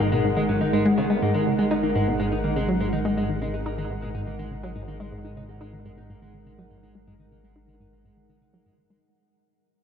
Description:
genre	ambient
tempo	123 BPM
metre	4/4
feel	straight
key	unclear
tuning	A4 = 440 Hz
part	sweeping resonant pad	sustained chords	0.0-9.0 s	G#3 to F#5	-27 LUFS	equal	chorus, shimmer reverb
part	clean electric guitar	arpeggios	0.0-9.0 s	D#3 to D#4	-33 LUFS	right 1 dB	auto-pan, tape echo, shimmer reverb
part	analog pluck	riff	0.0-9.0 s	G#2 to D#4	-25 LUFS	equal	chorus, tape echo
part	fat analog bass	bass	0.0-9.0 s	G#1	-35 LUFS	equal	none
room	wet huge ambient reverb, RT60 7.5 s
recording	dark, warm production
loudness	-22 LUFS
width	side -7 dB against mid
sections	0.0-9.0 A section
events	fade-out on clean electric guitar 0.0-9.0; fade-out 0.0-9.0; filter sweep on synth arpeggio sound 0.0-9.0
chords	0.0 G#7(no3)

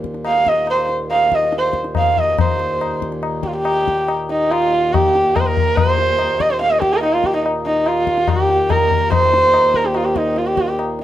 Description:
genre	indian classical, Hindustani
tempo	142 BPM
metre	4/4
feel	straight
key	Eb raga bhupali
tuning	A4 = 440 Hz
part	hand-pumped harmonium	drone	0.0-11.0 s	Eb2 to Bb2	-26 LUFS	equal	none
part	tabla	percussion	0.0-11.0 s	none	-21 LUFS	left 5 dB	none
part	dark sarangi	melody	0.3-10.8 s	Eb4 to F5	-15 LUFS	right 1 dB	none
room	light reverb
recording	dark, warm production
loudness	-14 LUFS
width	side -12 dB against mid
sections	0.0-2.4 A section; 2.4-11.0 B section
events	speeding up 0.0-11.0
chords	none

